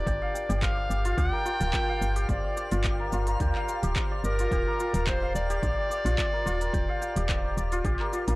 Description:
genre	organic downtempo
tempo	108 BPM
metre	4/4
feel	swing 54% on 16ths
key	G minor pentatonic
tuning	A4 = 442 Hz
part	bright clarinet	melody	0.0-8.4 s	Bb4 to G5	-32 LUFS	equal	analog delay
part	santur	arpeggios	0.0-8.4 s	D4 to G5	-32 LUFS	left 1 dB	tape echo
part	woody FM bass	bass	0.0-8.4 s	D1 to D2	-28 LUFS	equal	tube saturation, sidechain pumping
part	electronic kick drum	drums	0.1-8.0 s	none	-31 LUFS	equal	none
part	organic electronic drum kit	drums	0.1-8.4 s	handclaps, hi-hat, shaker	-35 LUFS	equal	overdrive
part	twinkling granular texture	texture	1.0-8.4 s	F5	-44 LUFS	right 3 dB	built-in reverb
room	little or no reverb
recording	dry, gritty hardware recording, cassette tape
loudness	-25 LUFS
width	side -21 dB against mid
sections	0.0-8.4 A section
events	none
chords	0.1 Gm7; 4.5 Ebmaj7

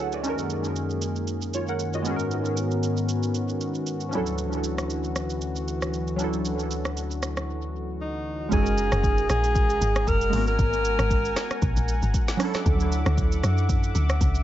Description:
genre	amapiano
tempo	116 BPM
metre	4/4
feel	swing 55% on 16ths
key	unclear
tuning	A4 = 438 Hz
part	glassy digital keys	accompaniment	0.0-14.4 s	E#3 to A5	-30 LUFS	right 2 dB	chorus, analog delay
part	warm analog pad	sustained chords	0.0-14.4 s	D2 to D6	-30 LUFS	left 1 dB	chorus, sidechain pumping
part	afro-pop drum kit	drums	0.1-14.4 s	hi-hat, kick drum, rim click, shaker, snare drum	-27 LUFS	equal	none
part	mellow alto saxophone	melody	8.0-12.0 s	D#4 to A#4	-26 LUFS	equal	analog delay
part	deep log drum bass	bass	8.5-14.4 s	F#1 to F#2	-24 LUFS	equal	none
room	digital ambience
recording	echo-heavy mix, nothing above 7.7 kHz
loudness	-23 LUFS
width	side -12 dB against mid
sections	0.0-8.5 A section; 8.5-14.4 B section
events	break 7.5-8.5; drop 8.5-14.4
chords	0.2 F#69; 2.1 G#m11; 4.1 Dmaj9; 8.5 F#69; 10.3 G#m11; 12.4 Dmaj9

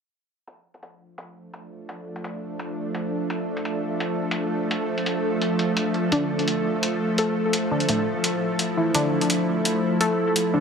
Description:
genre	half-time drum and bass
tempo	170 BPM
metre	4/4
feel	half-time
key	D minor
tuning	A4 = 440 Hz
part	bowed-like drone	sustained chords	1.8-10.6 s	F3 to A4	-24 LUFS	equal	built-in reverb
part	electronic hi-hat	drums	0.5-10.4 s	none	-28 LUFS	equal	low-pass filter on hats, low-pass filter on room
part	warbly dusty pluck	arpeggios	6.1-10.6 s	A3 to A4	-25 LUFS	equal	chorus, ping-pong delay
room	wet lush hall reverb, RT60 2.1 s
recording	none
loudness	-22 LUFS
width	side -6 dB against mid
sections	0.5-10.6 A section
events	filter sweep on drum 0.5-10.6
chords	0.5 Dm

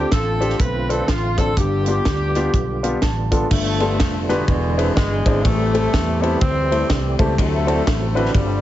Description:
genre	uptempo gospel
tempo	124 BPM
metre	4/4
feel	swing 61% on 8ths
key	unclear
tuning	A4 = 440 Hz
part	bright alto saxophone	melody	0.0-3.0 s	F4 to B4	-28 LUFS	right 2 dB	none
part	warm horn section	melody	0.0-8.6 s	B2 to B4	-24 LUFS	left 2 dB	tape echo
part	warm grand piano	accompaniment	0.0-8.6 s	G2 to A5	-23 LUFS	left 2 dB	none
part	tonewheel organ	sustained chords	0.0-8.6 s	D3 to G4	-28 LUFS	right 4 dB	slow rotary speaker, overdrive, chorus vibrato
part	vintage muted fingered electric bass	bass	0.0-8.6 s	E1 to E2	-23 LUFS	equal	none
part	tight funk drum kit	drums	0.1-8.5 s	crash cymbal, hi-hat, kick drum, ride cymbal, snare drum	-21 LUFS	equal	none
room	light reverb, small room ambience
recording	heavily compressed radio sound, nothing above 7.8 kHz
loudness	-16 LUFS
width	side -13 dB against mid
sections	0.0-3.5 A section; 3.5-8.6 B section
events	grand piano fill 2.5-3.5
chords	0.0 Dm7; 1.6 G7; 3.5 G9; 4.5 E7b13; 5.4 Am7; 7.4 D9

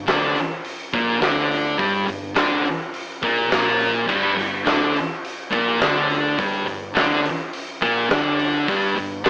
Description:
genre	quiet-loud alternative rock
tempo	105 BPM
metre	4/4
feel	straight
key	G minor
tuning	A4 = 440 Hz
part	overdriven picked electric bass	bass	0.0-9.3 s	G1 to D2	-35 LUFS	equal	none
part	thick fuzz guitar	riff	0.1-9.3 s	G2 to D4	-20 LUFS	equal	distortion, cassette tape
part	thick fuzz guitar	riff	0.1-9.3 s	G2 to D4	-27 LUFS	right 1 dB	none
part	big rock drum kit	drums	0.1-9.3 s	crash cymbal, hi-hat, kick drum, snare drum	-22 LUFS	equal	cassette tape
room	moderate booth ambience, RT60 0.2 s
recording	home recording on cassette, AM radio sound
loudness	-18 LUFS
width	side -34 dB against mid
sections	0.0-9.3 A section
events	none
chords	0.0 Gm

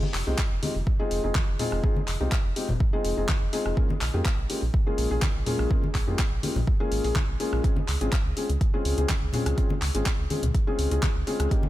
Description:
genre	progressive house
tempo	124 BPM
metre	4/4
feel	straight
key	unclear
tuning	A4 = 441 Hz
part	congas	percussion	0.0-11.7 s	none	-33 LUFS	left 2 dB	sidechain pumping on perc
part	round analog bass	bass	0.1-11.5 s	F1 to F2	-28 LUFS	right 1 dB	tube saturation, sidechain pumping
part	deep house drum kit	drums	0.1-11.6 s	handclaps, hi-hat, rim click	-33 LUFS	equal	none
part	felt-muted upright piano	stabs	0.3-11.6 s	G3 to Ab4	-29 LUFS	left 2 dB	sidechain pumping, dub echo
part	electronic kick drum	drums	0.4-11.6 s	none	-25 LUFS	equal	none
room	little or no reverb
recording	none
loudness	-23 LUFS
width	side -15 dB against mid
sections	0.0-11.7 A section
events	none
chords	0.0 Fm7; 3.8 Bbm7; 7.6 Dbmaj7

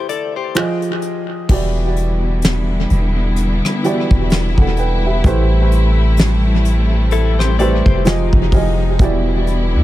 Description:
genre	contemporary R&B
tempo	64 BPM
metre	4/4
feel	swing 58% on 16ths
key	E minor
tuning	A4 = 441 Hz
part	warm baby grand piano	accompaniment	0.0-9.8 s	E3 to G5	-21 LUFS	right 2 dB	analog delay
part	direct-recorded clean electric guitar	arpeggios	0.0-0.8, 7.1-8.3 s	E4 to D5	-23 LUFS	left 8 dB	lush chorus, analog delay
part	soft brush drum kit	drums	0.1-9.7 s	crash cymbal, finger snaps, hi-hat, kick drum, rim click, snare drum	-17 LUFS	equal	analog delay
part	rich studio string section	sustained chords	1.5-9.8 s	C3 to E4	-22 LUFS	left 2 dB	none
part	long sustained 808-style bass	bass	1.5-9.8 s	E1 to E2	-15 LUFS	equal	none
room	little or no reverb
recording	echo-heavy mix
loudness	-13 LUFS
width	side -15 dB against mid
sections	0.0-1.5 A section; 1.5-9.8 B section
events	break 0.0-1.5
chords	0.0 Am7; 0.6 Fm7; 1.5 Em7; 5.2 Am7; 8.1 Fm7; 9.0 Em7

